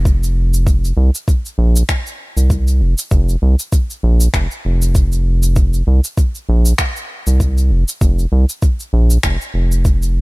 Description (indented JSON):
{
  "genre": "organic downtempo",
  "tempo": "98 BPM",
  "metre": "4/4",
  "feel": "swing 57% on 16ths",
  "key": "unclear",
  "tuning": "A4 = 440 Hz",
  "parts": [
    { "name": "round analog bass", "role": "bass", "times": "0.0-10.2 s", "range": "F1 to C2", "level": "-13 LUFS", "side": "equal", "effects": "sidechain pumping" },
    { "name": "electronic kick drum", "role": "drums", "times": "0.1-10.0 s", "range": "none", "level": "-14 LUFS", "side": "equal", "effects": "none" },
    { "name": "electronic shaker and finger snaps", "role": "drums", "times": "0.1-10.1 s", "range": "none", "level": "-23 LUFS", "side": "left 1 dB", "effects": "none" }
  ],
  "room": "little or no reverb",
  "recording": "none",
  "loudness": "-13 LUFS",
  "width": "side -24 dB against mid",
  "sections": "0.0-10.2 A section",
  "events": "none",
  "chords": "none"
}